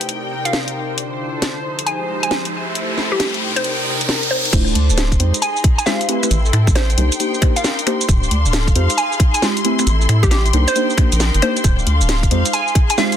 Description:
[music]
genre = UK garage, two-step garage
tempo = 135 BPM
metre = 4/4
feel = swing 65% on 16ths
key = unclear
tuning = A4 = 437 Hz
[part]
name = airy breathy pad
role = sustained chords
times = 0.0-4.5 s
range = C3 to B5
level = -28 LUFS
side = left 1 dB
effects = chorus, sidechain pumping
[part]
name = garage drum kit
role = drums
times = 0.0-13.2 s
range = crash cymbal, finger snaps, hi-hat, shaker, snare drum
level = -21 LUFS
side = equal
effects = none
[part]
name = warm studio string section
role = texture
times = 0.0-13.2 s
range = Ab3 to C6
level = -24 LUFS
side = left 2 dB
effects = sidechain pumping
[part]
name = hollow square pluck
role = melody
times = 0.5-13.2 s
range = G4 to Ab5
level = -22 LUFS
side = right 1 dB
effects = chorus, ping-pong delay
[part]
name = riser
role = sound effects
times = 2.1-4.5 s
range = none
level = -23 LUFS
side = equal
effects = none
[part]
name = deep mellow chord stab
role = stabs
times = 4.5-13.2 s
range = Ab3 to C5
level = -21 LUFS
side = equal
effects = chorus, ping-pong delay
[part]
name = rubbery square bass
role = bass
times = 4.5-12.4 s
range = D1 to A2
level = -16 LUFS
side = equal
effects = none
[part]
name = electronic kick drum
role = drums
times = 4.5-12.9 s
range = none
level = -15 LUFS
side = equal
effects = none
[sound]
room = light reverb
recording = dense, heavily limited modern master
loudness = -14 LUFS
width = side -10 dB against mid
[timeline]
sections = 0.0-4.5 A section; 4.5-13.2 B section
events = riser 2.1-4.5; drop 4.5-13.2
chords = 0.0 Cm7; 1.0 Dm7; 1.6 Fm7; 2.5 Am7; 3.4 Cm7; 4.5 Dm7; 5.2 Fm7; 6.1 Am7; 7.0 Cm7; 8.1 Dm7; 8.8 Fm7; 9.6 Am7; 10.5 Cm7; 11.6 Dm7; 12.3 Fm7

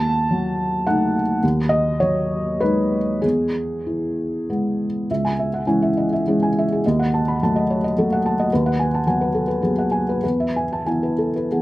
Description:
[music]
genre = neoclassical minimalist piano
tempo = 93-112 BPM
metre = 3/4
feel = rubato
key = C# minor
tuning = A4 = 440 Hz
[part]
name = felt-muted upright piano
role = solo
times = 0.0-11.6 s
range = C#2 to B5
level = -18 LUFS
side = equal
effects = slapback echo
[sound]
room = light reverb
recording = recorded outdoors, with no room sound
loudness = -18 LUFS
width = side -17 dB against mid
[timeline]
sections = 0.0-5.1 A section; 5.1-11.6 B section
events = none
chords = 0.0 D#dim; 1.4 G#m7/D#; 3.2 E; 5.1 C#m; 6.8 D#dim; 8.5 G#m7/D#; 10.2 E

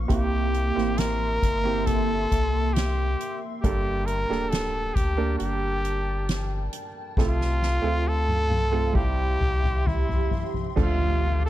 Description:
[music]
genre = pop ballad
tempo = 68 BPM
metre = 4/4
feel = straight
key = unclear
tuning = A4 = 436 Hz
[part]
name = clear grand piano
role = accompaniment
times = 0.0-11.5 s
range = G2 to Bb4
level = -31 LUFS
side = right 6 dB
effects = none
[part]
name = glassy FM pad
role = sustained chords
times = 0.0-11.5 s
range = Bb3 to D6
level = -34 LUFS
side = right 1 dB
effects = ensemble chorus, built-in reverb
[part]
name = warm sub bass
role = bass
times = 0.0-11.5 s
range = D1 to D2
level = -26 LUFS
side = equal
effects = none
[part]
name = clear flugelhorn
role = melody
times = 0.1-11.5 s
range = E4 to Bb4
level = -28 LUFS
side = equal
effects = none
[part]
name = soft-mallet drum kit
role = drums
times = 0.1-11.5 s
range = crash cymbal, hi-hat, kick drum, ride cymbal, snare drum, toms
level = -28 LUFS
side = equal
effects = none
[part]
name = impact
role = sound effects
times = 10.8-11.5 s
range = none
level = -33 LUFS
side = equal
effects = none
[sound]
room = little or no reverb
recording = dry, close 1970s-style studio recording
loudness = -22 LUFS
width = side -13 dB against mid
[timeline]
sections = 0.0-10.8 A section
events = drum fill 7.2-10.8; impact 10.8-11.5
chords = 0.1 C7; 3.6 Gmadd9; 7.2 F/C; 9.0 C; 10.8 Dm

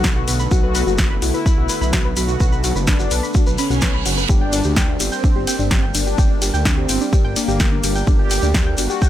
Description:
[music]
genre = melodic techno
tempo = 127 BPM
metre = 4/4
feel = straight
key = unclear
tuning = A4 = 440 Hz
[part]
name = mellow synth brass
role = melody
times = 0.0-9.1 s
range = Bb3 to G4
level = -24 LUFS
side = left 2 dB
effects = chorus, tape echo
[part]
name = lush unison pad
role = sustained chords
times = 0.0-9.1 s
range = D3 to D4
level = -29 LUFS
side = equal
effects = chorus, sidechain pumping
[part]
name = soft round pluck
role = arpeggios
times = 0.0-9.1 s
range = D4 to G6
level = -26 LUFS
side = equal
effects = chorus, sidechain pumping, tape echo
[part]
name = swelling detuned saw bass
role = bass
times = 0.0-8.9 s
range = F#1 to D2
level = -21 LUFS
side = equal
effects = sidechain pumping
[part]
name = electronic kick drum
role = drums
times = 0.0-9.1 s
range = none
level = -17 LUFS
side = equal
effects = none
[part]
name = house drum kit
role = drums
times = 0.0-8.9 s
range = hi-hat, ride cymbal, snare drum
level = -24 LUFS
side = equal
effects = sidechain pumping on hats, sidechain pumping on cymbals
[part]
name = shekere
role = percussion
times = 0.0-9.1 s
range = none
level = -27 LUFS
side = left 3 dB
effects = none
[part]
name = reverse cymbal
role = sound effects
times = 3.6-4.3 s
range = none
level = -28 LUFS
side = right 8 dB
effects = none
[sound]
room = digital ambience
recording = none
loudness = -15 LUFS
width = side -12 dB against mid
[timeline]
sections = 0.0-9.1 A section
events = reverse cymbal 3.6-4.3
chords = 0.0 Bm7; 4.3 Gm

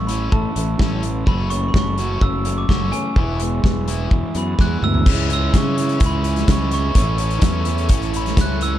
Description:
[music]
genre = indie rock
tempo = 127 BPM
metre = 4/4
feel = straight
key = A major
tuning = A4 = 440 Hz
[part]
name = glockenspiel with soft plastic mallets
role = melody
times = 0.0-8.8 s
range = G#5 to F#6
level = -26 LUFS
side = right 1 dB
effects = slapback echo
[part]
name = biting overdriven guitar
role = riff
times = 0.0-8.8 s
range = E3 to F#4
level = -28 LUFS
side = left 8 dB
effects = none
[part]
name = raw garage guitar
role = riff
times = 0.0-8.8 s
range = A2 to F#4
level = -28 LUFS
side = right 8 dB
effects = overdrive, lush chorus, slapback echo
[part]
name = fuzz fingered electric bass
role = bass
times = 0.0-8.8 s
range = E1 to C#3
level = -22 LUFS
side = equal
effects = overdrive
[part]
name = loose indie drum kit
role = drums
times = 0.1-8.7 s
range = crash cymbal, hi-hat, kick drum, snare drum, toms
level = -19 LUFS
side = equal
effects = none
[part]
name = ensemble organ-string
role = sustained chords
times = 5.1-8.8 s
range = G#4 to C#6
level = -35 LUFS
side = left 1 dB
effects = ensemble chorus
[sound]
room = studio reverb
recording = dark, warm production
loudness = -16 LUFS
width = side -12 dB against mid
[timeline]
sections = 0.0-5.1 A section; 5.1-8.8 B section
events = drum fill 4.6-5.1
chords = 0.0 A; 1.3 F#m; 3.2 E; 5.1 C#m; 7.0 A

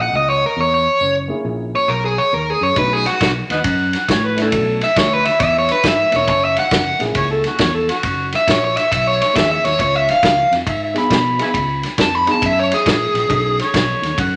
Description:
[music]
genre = electric blues shuffle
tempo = 137 BPM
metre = 4/4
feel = swing 66% on 8ths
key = F# mixolydian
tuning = A4 = 440 Hz
[part]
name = overdriven electric guitar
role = melody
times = 0.0-13.6 s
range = F#4 to B5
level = -18 LUFS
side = equal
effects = spring reverb
[part]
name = dark upright piano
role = accompaniment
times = 0.0-14.4 s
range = A3 to A#4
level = -28 LUFS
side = equal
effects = none
[part]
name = fingered electric bass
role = bass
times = 0.0-14.4 s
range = E1 to B2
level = -26 LUFS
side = equal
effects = none
[part]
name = warm soul drum kit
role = drums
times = 2.8-14.3 s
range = kick drum, ride cymbal, snare drum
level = -22 LUFS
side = equal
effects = none
[part]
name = overdriven harmonica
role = second line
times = 3.5-14.4 s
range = E4 to B5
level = -22 LUFS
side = equal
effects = none
[sound]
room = moderate large studio reverb, RT60 0.9 s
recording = nothing above 10.4 kHz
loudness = -16 LUFS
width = mono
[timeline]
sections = 0.0-14.4 A section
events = none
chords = 0.0 F#7; 2.8 B7; 4.5 Bm7; 6.3 F#7; 9.8 C#7; 13.3 B7

